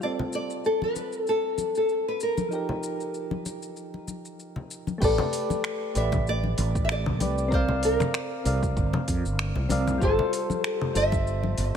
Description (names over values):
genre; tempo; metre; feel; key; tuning
sunset chillout; 96 BPM; 4/4; swing 55% on 16ths; A phrygian; A4 = 440 Hz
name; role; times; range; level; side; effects
nylon-string guitar; melody; 0.0-11.8 s; A4 to E5; -28 LUFS; left 1 dB; tape echo
soft electric-piano-like synth keys; accompaniment; 0.0-11.8 s; F3 to F5; -31 LUFS; equal; chorus, auto-pan, digital delay
deep house drum kit; drums; 0.0-11.7 s; congas, crash cymbal, finger snaps, hi-hat, shaker; -32 LUFS; left 1 dB; overdrive, small room ambience
congas; percussion; 0.2-11.6 s; none; -33 LUFS; left 4 dB; none
mellow fretless electric bass; bass; 5.0-11.7 s; G1 to F2; -27 LUFS; right 1 dB; lush chorus
electronic kick drum; drums; 5.0-11.2 s; none; -28 LUFS; right 1 dB; overdrive, small room ambience
room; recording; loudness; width
light reverb, digital ambience; none; -24 LUFS; side -8 dB against mid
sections
0.0-5.0 A section; 5.0-11.8 B section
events
none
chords
0.0 G9sus4; 2.5 F9sus4; 5.0 A9sus4; 7.5 C9sus4; 10.0 G9sus4